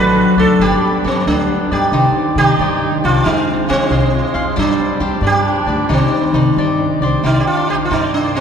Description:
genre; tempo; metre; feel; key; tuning
mexican folk, mariachi; 90 BPM (dotted quarters); 6/8; straight; C minor; A4 = 439 Hz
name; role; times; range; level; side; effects
sitar; melody; 0.0-8.4 s; C4 to B4; -17 LUFS; right 2 dB; none
clear trumpet; second line; 0.0-8.4 s; G3 to F#4; -26 LUFS; right 3 dB; none
cavaquinho; accompaniment; 0.0-8.4 s; D4 to F5; -21 LUFS; left 2 dB; none
concert harp; arpeggios; 0.0-8.4 s; Eb3 to F4; -18 LUFS; left 1 dB; none
upright bass; bass; 0.0-8.3 s; G1 to G3; -19 LUFS; equal; none
room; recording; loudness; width
wet cathedral reverb, RT60 5.3 s; recorded in a church or concert hall; -12 LUFS; side -7 dB against mid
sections
0.0-7.2 A section; 7.2-8.4 B section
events
none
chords
0.0 D7; 0.6 G; 1.9 Cmadd9; 3.3 Fm; 4.6 Gsus4; 5.2 G; 5.9 Cmadd9

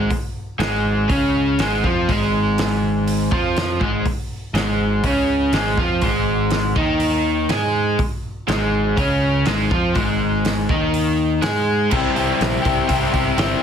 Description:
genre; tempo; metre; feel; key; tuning
indie rock; 122 BPM; 4/4; straight; Ab major; A4 = 441 Hz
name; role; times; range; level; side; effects
overdriven electric guitar; riff; 0.0-13.6 s; Ab2 to Ab4; -18 LUFS; equal; none
growling fingered electric bass; bass; 0.0-13.5 s; G1 to Ab2; -24 LUFS; equal; overdrive
loose indie drum kit; drums; 0.1-13.5 s; crash cymbal, hi-hat, kick drum, snare drum; -24 LUFS; equal; none
room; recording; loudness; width
moderate studio reverb, RT60 0.5 s; heavily compressed radio sound, multiband compression; -17 LUFS; side -8 dB against mid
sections
0.0-11.9 A section; 11.9-13.6 B section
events
none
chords
0.0 Ab5; 11.9 C

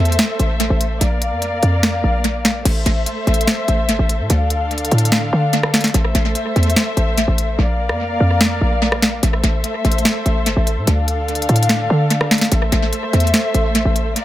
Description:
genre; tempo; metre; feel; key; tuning
hip hop, trap; 146 BPM; 4/4; half-time; A phrygian; A4 = 443 Hz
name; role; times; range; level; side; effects
muted studio string section; sustained chords; 0.0-14.2 s; D3 to F5; -21 LUFS; left 1 dB; none
short 808-style bass; bass; 0.0-14.1 s; G1 to D3; -17 LUFS; equal; none
trap drum kit; drums; 0.1-14.2 s; crash cymbal, finger snaps, hi-hat, rim click, snare drum; -18 LUFS; equal; tape echo
room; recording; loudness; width
light reverb, digital ambience; echo-heavy mix; -14 LUFS; side -14 dB against mid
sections
0.0-2.7 A section; 2.7-14.2 B section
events
hi-hats muted 7.6-9.2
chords
0.0 Am; 1.0 Bb; 2.7 Am; 4.3 Dm; 5.9 Am; 7.6 Bb; 9.2 Am; 10.9 Dm; 12.5 Am

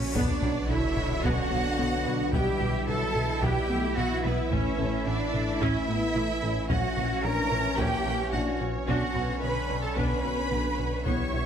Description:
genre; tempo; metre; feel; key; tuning
cinematic, hybrid orchestral and electronic film score; 110 BPM; 4/4; straight; B minor; A4 = 439 Hz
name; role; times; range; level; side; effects
warm symphonic violin section; second line; 0.0-11.5 s; B4 to C#6; -35 LUFS; right 2 dB; none
deep dark ambient pad; sustained chords; 0.0-11.5 s; C#3 to E5; -37 LUFS; equal; chorus, built-in reverb
glassy wavetable pluck; arpeggios; 0.0-11.5 s; E3 to B4; -40 LUFS; right 1 dB; none
round analog bass; riff; 0.0-11.5 s; A2 to B3; -34 LUFS; left 2 dB; none
rich symphonic cello section; bass; 0.0-11.5 s; B3 to C#5; -31 LUFS; right 2 dB; none
warm sub bass; bass; 0.0-11.5 s; A1 to B1; -35 LUFS; equal; none
cymbal swell and sub drop; sound effects; 0.0-2.3 s; none; -35 LUFS; equal; none
rich symphonic violin section; melody; 0.1-11.5 s; C#5 to E5; -40 LUFS; left 3 dB; none
clear symphonic viola section; accompaniment; 0.1-11.5 s; D3 to G4; -36 LUFS; right 1 dB; none
warm trombone section; sustained chords; 0.1-11.5 s; B2 to E4; -38 LUFS; right 4 dB; none
taiko ensemble; drums; 0.1-11.5 s; none; -35 LUFS; equal; none
rich symphonic double bass section; bass; 0.2-11.4 s; A1 to B1; -36 LUFS; right 3 dB; none
mellow French horn section; sustained chords; 1.2-11.5 s; D3 to E4; -36 LUFS; left 6 dB; none
room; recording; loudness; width
light reverb; close, detailed microphones; -25 LUFS; side -8 dB against mid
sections
0.2-11.5 A section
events
cymbal swell 0.0; impact 0.2-2.3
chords
0.2 Bmadd9; 2.3 Em/B; 4.5 A; 6.7 F#/A#; 8.9 Bmadd9

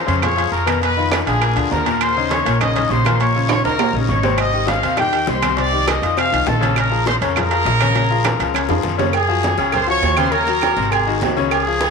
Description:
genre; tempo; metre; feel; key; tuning
latin, salsa; 202 BPM; 4/4; straight; Bb minor; A4 = 438 Hz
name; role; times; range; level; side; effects
bright trumpet section; melody; 0.0-11.9 s; G4 to Eb6; -19 LUFS; equal; tape echo
clear concert grand piano; accompaniment; 0.0-11.9 s; Bb2 to Db5; -21 LUFS; left 10 dB; none
upright bass; bass; 0.1-11.9 s; Ab1 to Gb2; -22 LUFS; right 2 dB; none
guiro; percussion; 0.1-11.9 s; none; -32 LUFS; left 12 dB; none
timbales and agogo bells; percussion; 0.1-11.9 s; none; -23 LUFS; right 15 dB; none
claves; percussion; 0.2-11.7 s; none; -29 LUFS; right 14 dB; none
congas; percussion; 0.2-11.9 s; none; -28 LUFS; right 1 dB; none
bongos and cowbell; percussion; 4.4-11.9 s; none; -29 LUFS; left 10 dB; none
room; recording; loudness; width
moderate plate reverb, RT60 2.6 s; 1960s-style stereo with parts hard left and right; -15 LUFS; side -5 dB against mid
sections
0.0-9.1 A section; 9.1-11.9 B section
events
drum fill 3.5-4.4, 8.0-9.1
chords
0.0 Bbm7; 0.8 Fm7b5; 1.4 Bb7; 2.0 Eb5; 3.2 Bbm; 3.8 Eb5; 4.4 Abmaj7; 5.6 Cm; 6.2 F7; 6.8 Bbm7; 9.1 Gbsus2; 10.3 Ebm7; 10.9 Ab7

